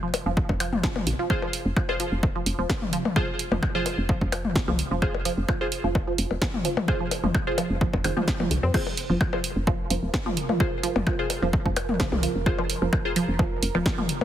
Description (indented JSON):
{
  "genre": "minimal techno",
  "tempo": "129 BPM",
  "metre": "4/4",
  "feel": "swing 53% on 16ths",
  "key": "F minor",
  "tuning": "A4 = 440 Hz",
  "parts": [
    { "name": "resonant blip pluck", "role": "riff", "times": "0.0-14.0 s", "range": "Eb3 to C4", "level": "-30 LUFS", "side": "right 3 dB", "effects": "phaser, sidechain pumping, digital delay" },
    { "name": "punchy analog drum machine", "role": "drums", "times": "0.1-14.2 s", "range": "crash cymbal, hi-hat, snare drum", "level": "-30 LUFS", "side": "right 2 dB", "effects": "overdrive" },
    { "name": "electronic percussion blips and toms", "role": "percussion", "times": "0.1-14.2 s", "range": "none", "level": "-29 LUFS", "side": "left 4 dB", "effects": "digital delay" },
    { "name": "woody FM bass", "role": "bass", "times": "0.3-13.8 s", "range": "Eb1 to F2", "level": "-28 LUFS", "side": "equal", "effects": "tube saturation, sidechain pumping" },
    { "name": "electronic kick drum", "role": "drums", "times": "0.4-14.0 s", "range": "none", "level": "-27 LUFS", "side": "equal", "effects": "overdrive" },
    { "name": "wavetable chord stab", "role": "stabs", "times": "1.3-13.1 s", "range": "F4 to C5", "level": "-32 LUFS", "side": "equal", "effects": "digital delay" },
    { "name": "pulsing gated texture", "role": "texture", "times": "9.6-14.2 s", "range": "Bb4", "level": "-37 LUFS", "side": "right 7 dB", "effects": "chorus, built-in reverb, sidechain pumping" }
  ],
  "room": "light reverb",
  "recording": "heavily compressed radio sound",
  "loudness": "-22 LUFS",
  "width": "side -11 dB against mid",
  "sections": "0.0-14.2 A section",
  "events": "none",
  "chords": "0.0 F5"
}